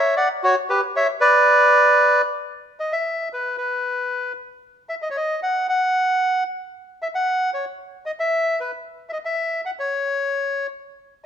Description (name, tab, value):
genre	tango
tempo	114 BPM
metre	4/4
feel	rubato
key	B major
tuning	A4 = 439 Hz
part	bandoneon	solo	0.0-10.7 s	F#4 to F#5	-18 LUFS	equal	none
room	wet large studio reverb, RT60 1.5 s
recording	minimal, uncompressed stereo recording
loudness	-18 LUFS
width	side -8 dB against mid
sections	0.0-2.5 A section; 2.5-11.3 B section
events	none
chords	0.4 Bm; 2.5 N.C.